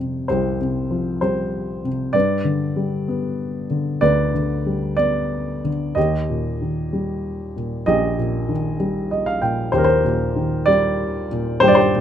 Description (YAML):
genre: classical, lyrical solo piano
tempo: 64 BPM (dotted quarters)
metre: 6/8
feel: rubato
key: unclear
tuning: A4 = 440 Hz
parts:
  - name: dark baby grand piano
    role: solo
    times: 0.0-12.0 s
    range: Bb1 to G5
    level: -18 LUFS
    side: equal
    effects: none
room: light reverb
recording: close, detailed microphones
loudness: -18 LUFS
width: side -9 dB against mid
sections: 0.0-12.0 A section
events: grand piano fill 8.8-9.7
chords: 0.0 Fsus2; 2.1 G; 6.0 Eb6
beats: | 0.30 1.23 | 2.15 3.08 | 4.02 4.98 | 5.97 6.94 | 7.87 8.79 | 9.72 10.67 | 11.63